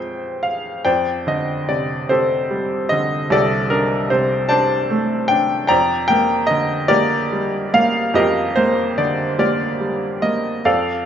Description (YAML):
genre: classical, lyrical solo piano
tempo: 49 BPM (dotted quarters)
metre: 6/8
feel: rubato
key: F mixolydian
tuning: A4 = 439 Hz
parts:
  - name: bright upright piano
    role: solo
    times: 0.0-11.1 s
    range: C2 to Bb5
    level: -16 LUFS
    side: equal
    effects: none
room: moderate recital hall reverb, RT60 1.4 s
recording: nothing above 7.6 kHz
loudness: -16 LUFS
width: side -9 dB against mid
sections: 0.8-11.1 A section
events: none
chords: 0.0 Fm; 0.8 F69; 5.7 F13sus4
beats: | 0.85 2.09 | 3.30 4.49 | 5.69 6.91 | 8.14 9.39 | 10.65